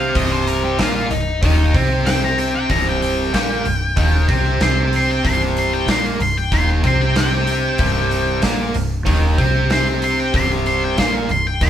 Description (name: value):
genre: blues rock power trio and southern rock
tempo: 94 BPM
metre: 4/4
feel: straight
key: C minor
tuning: A4 = 440 Hz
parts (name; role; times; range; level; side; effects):
- octave-fuzz lead guitar; melody; 0.0-11.7 s; Eb4 to C6; -22 LUFS; left 2 dB; distortion
- distorted electric guitar; riff; 0.0-11.7 s; C2 to C4; -20 LUFS; right 1 dB; overdrive
- vintage muted fingered electric bass; bass; 0.0-11.7 s; C1 to C2; -20 LUFS; equal; none
- big rock drum kit; drums; 0.2-11.7 s; hi-hat, kick drum, snare drum; -22 LUFS; equal; none
room: wet studio reverb, RT60 0.8 s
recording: band playing live in one room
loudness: -15 LUFS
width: side -10 dB against mid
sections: 0.0-11.7 A section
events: lead electric guitar solo 0.0-11.7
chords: 0.0 Cm